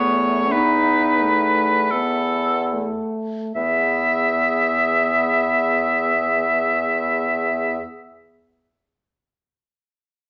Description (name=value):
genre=classical, slow romantic movement for wind quintet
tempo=34-50 BPM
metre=3/4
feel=rubato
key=E major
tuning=A4 = 440 Hz
part: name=bright oboe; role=second line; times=0.0-7.8 s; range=A4 to E5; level=-21 LUFS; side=equal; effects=none
part: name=clear clarinet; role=accompaniment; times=0.0-7.8 s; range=B3 to G#4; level=-29 LUFS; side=equal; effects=none
part: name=warm French horn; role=accompaniment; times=0.0-7.8 s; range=A3 to B3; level=-30 LUFS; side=equal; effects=none
part: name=warm bassoon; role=bass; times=0.0-7.8 s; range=E2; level=-28 LUFS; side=equal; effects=none
room=wet large studio reverb, RT60 1.1 s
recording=nothing above 8.0 kHz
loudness=-20 LUFS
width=mono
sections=0.0-3.6 A section; 3.6-8.2 B section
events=slowing down 0.0-3.6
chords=0.0 B7/E; 3.6 E